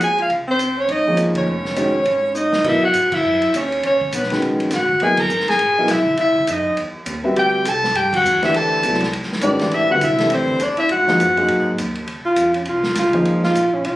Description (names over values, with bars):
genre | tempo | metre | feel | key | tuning
modal jazz | 204 BPM | 4/4 | swing 60% on 8ths | unclear | A4 = 436 Hz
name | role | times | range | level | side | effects
warm soprano saxophone | melody | 0.0-11.8 s | B4 to A#5 | -18 LUFS | equal | none
breathy alto saxophone | second line | 0.0-14.0 s | B3 to A#4 | -20 LUFS | equal | none
upright bass | bass | 0.0-14.0 s | E1 to A#2 | -31 LUFS | equal | none
vintage drum kit | drums | 0.0-13.9 s | crash cymbal, hi-hat, kick drum, ride cymbal, snare drum | -26 LUFS | equal | none
warm grand piano | accompaniment | 1.1-13.5 s | D3 to E5 | -21 LUFS | equal | none
room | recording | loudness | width
moderate studio reverb, RT60 0.8 s | recorded on a phone in the room, club reverb, compression | -15 LUFS | side -15 dB against mid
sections
0.0-2.7 A section; 2.7-12.1 B section; 12.1-14.0 C section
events
band accent 1.3, 3.1, 5.2, 8.1; drum fill 2.4; alto saxophone solo 12.1-14.0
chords
0.0 Dbmaj9; 2.7 F#9sus4; 7.4 D9sus4; 10.9 G#9; 12.1 Dbmaj9